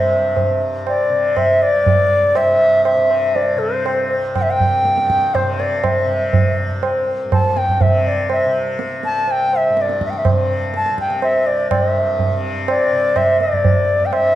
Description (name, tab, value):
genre	indian classical, Hindustani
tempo	122 BPM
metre	3/4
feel	straight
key	C raga bhupali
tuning	A4 = 440 Hz
part	bright reedy bansuri	melody	0.0-14.4 s	C5 to A5	-16 LUFS	equal	none
part	tanpura	drone	0.0-14.4 s	C2 to C3	-26 LUFS	left 1 dB	none
part	tabla	percussion	0.4-14.3 s	none	-19 LUFS	right 2 dB	none
room	wet recital hall reverb, RT60 1.6 s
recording	dark, warm production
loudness	-14 LUFS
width	side -13 dB against mid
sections	0.0-11.7 A section; 11.7-14.4 B section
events	speeding up 0.0-14.4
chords	none